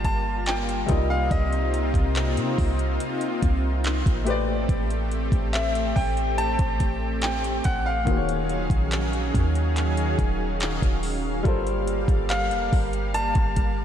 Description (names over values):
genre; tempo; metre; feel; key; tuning
contemporary R&B; 71 BPM; 4/4; straight; unclear; A4 = 444 Hz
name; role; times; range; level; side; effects
clear baby grand piano; melody; 0.0-13.8 s; Eb5 to A5; -29 LUFS; left 1 dB; ping-pong delay
clear grand piano; accompaniment; 0.0-13.8 s; C3 to Eb5; -32 LUFS; left 3 dB; lush chorus
lush unison pad; sustained chords; 0.0-13.8 s; C3 to F5; -28 LUFS; equal; chorus, sidechain pumping
clean 808-style bass; bass; 0.0-13.8 s; Eb1 to C3; -26 LUFS; equal; none
smooth R&B drum kit; drums; 0.0-13.8 s; handclaps, hi-hat, kick drum; -26 LUFS; equal; vintage 12-bit sampler grit
room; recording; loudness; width
moderate lush hall reverb, RT60 3.0 s; dreamy mix soaked in reverb; -21 LUFS; side -9 dB against mid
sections
0.0-13.8 A section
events
none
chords
0.0 Gm11; 0.9 Cm7; 4.3 Am11; 8.1 Ebm11; 11.4 Gm11